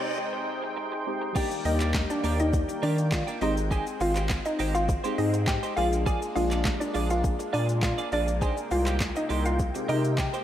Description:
dance-pop; 102 BPM; 4/4; straight; Eb major; A4 = 440 Hz
deep mellow chord stab; accompaniment; 0.0-10.4 s; C3 to Bb4; -34 LUFS; left 2 dB; chorus, sidechain pumping
filtered supersaw swell; sustained chords; 0.0-10.4 s; C3 to G5; -35 LUFS; equal; sidechain pumping
twelve-string electric guitar; riff; 0.0-10.4 s; Bb3 to D5; -36 LUFS; right 6 dB; analog chorus
hollow square pluck; melody; 1.4-10.3 s; D4 to Ab5; -29 LUFS; equal; chorus, sidechain pumping, diffuse ambient delay
smooth R&B drum kit; drums; 1.4-10.4 s; crash cymbal, handclaps, hi-hat, kick drum, shaker, snare drum; -31 LUFS; equal; overdrive
tube shaker; percussion; 1.4-10.4 s; -49 LUFS; left 12 dB
saturated sub bass; bass; 1.6-10.3 s; Ab1 to Eb3; -28 LUFS; equal; sidechain pumping
moderate plate reverb, RT60 2.4 s; dreamy mix soaked in reverb, high-pass filter; -24 LUFS; side -11 dB against mid
0.0-1.4 A section; 1.4-10.4 B section
break 0.0-1.4; build-up 0.0-1.4; filter sweep 0.0-1.4; drop 1.4-10.4
0.0 Abmaj7/C; 1.4 Ebmaj7; 3.4 Abmaj7; 5.8 Bb7; 8.4 Abmaj7
0.18 0.77 | 1.36 1.95 2.53 3.12 | 3.71 4.30 4.89 5.48 | 6.06 6.65 7.24 7.83 | 8.42 9.01 9.59 10.18

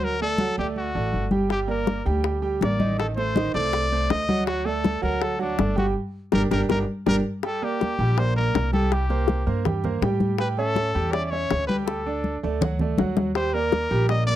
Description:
latin, salsa; 162 BPM; 4/4; straight; G minor; A4 = 439 Hz
bright trumpet; melody; 0.0-14.4 s; D4 to Eb5; -27 LUFS; left 2 dB
bright concert grand piano; accompaniment; 0.0-14.4 s; Eb3 to G5; -28 LUFS; right 6 dB
upright bass; bass; 0.0-14.4 s; G1 to A2; -26 LUFS; equal
congas; percussion; 0.0-14.4 s; -26 LUFS; left 1 dB
bongos; percussion; 1.5-14.3 s; -26 LUFS; left 11 dB
light reverb; dry, close 1970s-style studio recording; -21 LUFS; side -12 dB against mid
0.0-7.4 A section; 7.4-14.4 B section
drum fill 6.0-7.4, 11.9-13.4; band accent 6.0-7.4
0.0 D; 1.5 Gm; 3.0 Adim; 4.5 D; 6.0 Gm; 7.4 Bbmaj13; 8.9 C5; 10.4 A7; 11.9 Dsus4; 12.6 D; 13.4 Ebmaj7
| 0.02 0.39 0.76 1.13 | 1.50 1.88 2.25 2.62 | 2.99 3.36 3.73 4.10 | 4.47 4.84 5.21 5.58 | 5.96 6.33 6.70 7.07 | 7.44 7.81 8.18 8.55 | 8.92 9.29 9.66 10.03 | 10.40 10.77 11.14 11.51 | 11.88 12.25 12.62 12.99 | 13.36 13.73 14.10

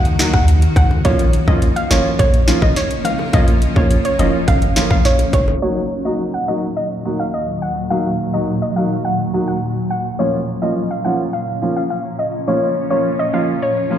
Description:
dancehall; 105 BPM; 4/4; straight; Eb minor; A4 = 437 Hz
granular cloud pad; sustained chords; 0.0-14.0 s; Eb2 to Gb4; -23 LUFS; equal; built-in reverb, sidechain pumping
punchy sub bass; bass; 0.0-5.6 s; F1 to Eb2; -15 LUFS; equal
island pop drum kit; drums; 0.1-5.5 s; hi-hat, kick drum, rim click, snare drum; -17 LUFS; equal; overdrive
clear grand piano; accompaniment; 0.2-14.0 s; F3 to Gb4; -21 LUFS; right 1 dB
soft round pluck; melody; 0.3-13.7 s; Db5 to Gb5; -21 LUFS; equal; chorus, ping-pong delay
bongos; percussion; 0.8-5.6 s; -29 LUFS; left 1 dB
light reverb; played on a big sound system in a bare room, large studio reverb, low-pass filter; -14 LUFS; side -10 dB against mid
0.0-5.6 A section; 5.6-14.0 B section
filter sweep 5.6-14.0
0.0 Ebm; 1.0 Bbm; 5.6 Ebm; 10.2 Bbm
0.48 | 1.05 1.62 2.19 2.76 | 3.33 3.91 4.48 5.05 | 5.62 6.19 6.76 7.33 | 7.91 8.48 9.05 9.62 | 10.19 10.76 11.34 11.91 | 12.48 13.05 13.62

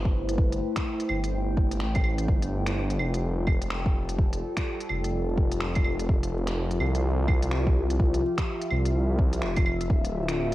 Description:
future garage; 126 BPM; 4/4; swing 62% on 16ths; A4 = 437 Hz
warbly tape-like pad; sustained chords; 0.0-10.5 s; D3 to G5; -31 LUFS; left 1 dB; chorus, built-in reverb, phaser, sidechain pumping
swelling detuned saw bass; bass; 0.0-10.5 s; D1 to C2; -27 LUFS; equal; tube saturation, sidechain pumping
electronic kick drum; drums; 0.1-10.0 s; -25 LUFS; equal; overdrive, vintage 12-bit sampler grit
organic electronic drum kit; drums; 0.3-10.5 s; claves, finger snaps, hi-hat; -34 LUFS; right 1 dB; vintage 12-bit sampler grit
light reverb; vinyl crackle; -24 LUFS; side -16 dB against mid
0.0-10.5 A section
0.0 Am7; 2.3 G7sus4; 6.1 Fmaj7; 9.9 Dm
| 0.38 0.85 1.33 1.80 | 2.28 2.76 3.23 3.71 | 4.19 4.66 5.14 5.62 | 6.09 6.57 7.04 7.52 | 8.00 8.47 8.95 9.42 | 9.90 10.38

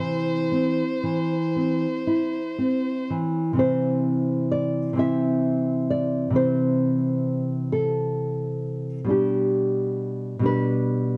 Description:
romantic duo for violin and classical guitar; 38-45 BPM (dotted quarters); 12/8; rubato; C major; A4 = 437 Hz
rich violin; melody; 0.0-3.1 s; C5; -33 LUFS; equal; analog delay
nylon-string guitar; accompaniment; 0.0-11.2 s; B2 to E5; -24 LUFS; equal
wet small room reverb, RT60 0.5 s; cassette tape; -24 LUFS; mono
0.0-3.6 A section; 3.6-11.2 B section
0.0 C; 9.1 G/B
0.52 2.07 | 3.59 4.99 6.37 7.74 | 9.12 10.45

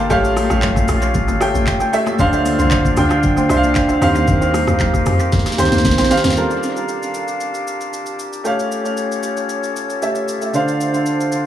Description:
amapiano; 115 BPM; 4/4; straight; G minor; A4 = 440 Hz
clear grand piano; accompaniment; 0.0-11.5 s; D3 to A5; -18 LUFS; right 1 dB; analog delay
flute section; sustained chords; 0.0-11.5 s; C#4 to A5; -23 LUFS; left 1 dB
deep log drum bass; bass; 0.0-6.4 s; G1 to F2; -19 LUFS; equal
smooth R&B drum kit; drums; 0.1-11.4 s; handclaps, hi-hat, kick drum, rim click, shaker, snare drum; -22 LUFS; equal; analog delay
congas; percussion; 0.1-6.4 s; -26 LUFS; left 6 dB
light reverb, small room ambience; echo-heavy mix, studio ambience; -14 LUFS; side -11 dB against mid
0.0-6.4 A section; 6.4-11.5 B section
drop 0.0-6.4; drum fill 5.3-6.4
0.1 A7b13; 2.2 Dm7; 4.0 Eb69; 6.4 Gm9; 8.5 A7b13; 10.5 Dm7
| 0.10 0.63 1.15 1.67 | 2.19 2.71 3.23 3.76 | 4.28 4.80 5.32 5.84 | 6.37 6.89 7.41 7.93 | 8.45 8.97 9.50 10.02 | 10.54 11.06

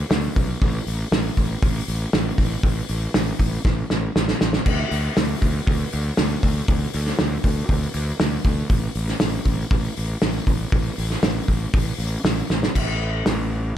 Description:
rock, shoegaze and dream pop; 119 BPM; 4/4; straight; A4 = 440 Hz
fuzz fingered electric bass; bass; 0.1-13.7 s; A1 to D2; -24 LUFS; equal; overdrive
loose indie drum kit; drums; 0.1-13.4 s; crash cymbal, hi-hat, kick drum, snare drum; -21 LUFS; equal
light reverb; dark, warm production; -19 LUFS; side -11 dB against mid
0.0-12.8 A section; 12.8-13.8 B section
drum fill 3.7-4.7, 12.5
0.11 | 0.62 1.12 1.63 2.14 | 2.64 3.15 3.65 4.16 | 4.67 5.17 5.68 6.18 | 6.69 7.19 7.70 8.21 | 8.71 9.22 9.72 10.23 | 10.73 11.24 11.75 12.25 | 12.76 13.27

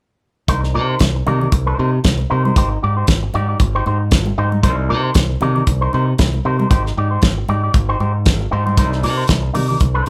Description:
disco; 116 BPM; 4/4; swing 56% on 16ths; C minor; A4 = 435 Hz
electric guitar with an envelope filter; accompaniment; 0.5-10.1 s; Eb4 to D5; -24 LUFS; equal; tube saturation
modern bright fingered electric bass; bass; 0.5-10.1 s; Ab1 to C3; -21 LUFS; equal
damped 70s drum kit; drums; 0.5-10.1 s; hi-hat, kick drum, snare drum; -18 LUFS; equal
congas; percussion; 0.5-10.1 s; -28 LUFS; equal
light reverb; band playing live in one room; -17 LUFS; mono
0.5-10.1 A section
0.5 Cm7; 2.6 Abmaj7; 4.6 Cm7; 6.7 Abmaj7; 8.8 Cm7
| 0.48 1.00 1.52 2.04 | 2.56 3.08 3.60 4.12 | 4.63 5.15 5.67 6.19 | 6.71 7.22 7.74 8.26 | 8.78 9.29 9.81

